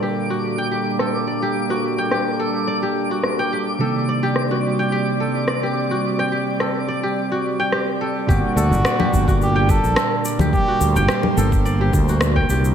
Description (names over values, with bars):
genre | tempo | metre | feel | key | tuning
organic downtempo | 107 BPM | 4/4 | straight | G harmonic minor | A4 = 442 Hz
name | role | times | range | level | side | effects
mellow electric guitar | accompaniment | 0.0-12.7 s | Bb2 to D4 | -25 LUFS | right 3 dB | sidechain pumping, digital delay
airy breathy pad | sustained chords | 0.0-12.7 s | G3 to D5 | -26 LUFS | right 1 dB | chorus, sidechain pumping
kora | arpeggios | 0.0-12.7 s | F#4 to G5 | -24 LUFS | left 1 dB | low-pass filter, digital delay
twinkling granular texture | texture | 0.0-8.3 s | D6 | -30 LUFS | right 1 dB | built-in reverb
electronic rim click, shaker and congas | drums | 1.0-12.7 s | none | -24 LUFS | left 2 dB | low-pass filter on perc, low-pass filter on snare, low-pass filter on toms, low-pass filter on room
trumpet with cup mute | melody | 8.3-11.1 s | F#4 to A4 | -23 LUFS | right 1 dB | digital delay
fretless electric bass | bass | 8.3-12.7 s | G1 to D2 | -19 LUFS | equal | tube saturation, sidechain pumping
electronic kick drum | drums | 8.3-12.5 s | none | -20 LUFS | equal | none
room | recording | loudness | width
moderate concert hall reverb, RT60 2.3 s | none | -17 LUFS | side -8 dB against mid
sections
0.0-8.3 A section; 8.3-12.7 B section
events
none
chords
0.0 Gm; 3.8 Cm9; 8.3 Gm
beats
0.44 1.00 | 1.56 2.12 2.68 3.24 | 3.80 4.36 4.92 5.49 | 6.05 6.61 7.17 7.73 | 8.29 8.85 9.41 9.97 | 10.53 11.09 11.65 12.21